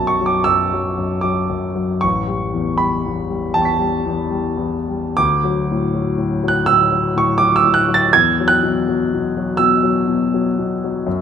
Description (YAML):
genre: classical, impressionist solo piano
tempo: 65-85 BPM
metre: 4/4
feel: rubato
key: unclear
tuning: A4 = 439 Hz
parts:
  - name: warm concert grand piano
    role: solo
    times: 0.0-11.2 s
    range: A1 to B6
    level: -15 LUFS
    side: equal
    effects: none
room: wet recital hall reverb, RT60 1.4 s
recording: none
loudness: -15 LUFS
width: side -8 dB against mid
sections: 0.0-11.2 A section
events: none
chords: 0.0 Bm; 2.0 A9; 5.2 D; 8.1 Esus2